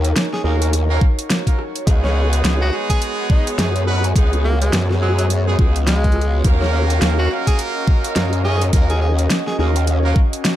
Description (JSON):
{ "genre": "glitch hop", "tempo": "105 BPM", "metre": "4/4", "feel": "swing 59% on 16ths", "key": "Eb minor", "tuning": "A4 = 440 Hz", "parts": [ { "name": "growl bass", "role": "bass", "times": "0.0-10.1 s", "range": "Db2 to Gb2", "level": "-17 LUFS", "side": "equal", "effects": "chorus" }, { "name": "pop drum kit", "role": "drums", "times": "0.0-10.6 s", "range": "hi-hat, rim click, snare drum", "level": "-22 LUFS", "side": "equal", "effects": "overdrive" }, { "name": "airy breathy pad", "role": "texture", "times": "0.0-10.6 s", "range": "Cb4 to Eb5", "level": "-26 LUFS", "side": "equal", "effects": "chorus, sidechain pumping" }, { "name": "clear tenor saxophone", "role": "melody", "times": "0.3-9.7 s", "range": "Gb3 to Ab4", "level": "-27 LUFS", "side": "equal", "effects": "ping-pong delay" }, { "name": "brilliant horn section", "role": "stabs", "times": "0.4-10.2 s", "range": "Ab3 to Eb5", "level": "-25 LUFS", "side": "right 2 dB", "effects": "sidechain pumping, ping-pong delay" }, { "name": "electronic kick drum", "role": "drums", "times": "1.0-10.3 s", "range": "none", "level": "-15 LUFS", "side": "equal", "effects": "overdrive" } ], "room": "light reverb, digital ambience", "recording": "dark, warm production", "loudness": "-15 LUFS", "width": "side -13 dB against mid", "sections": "0.0-10.6 A section", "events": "none", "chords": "0.0 Ebm7; 1.9 Db7sus4; 6.4 Ebm7" }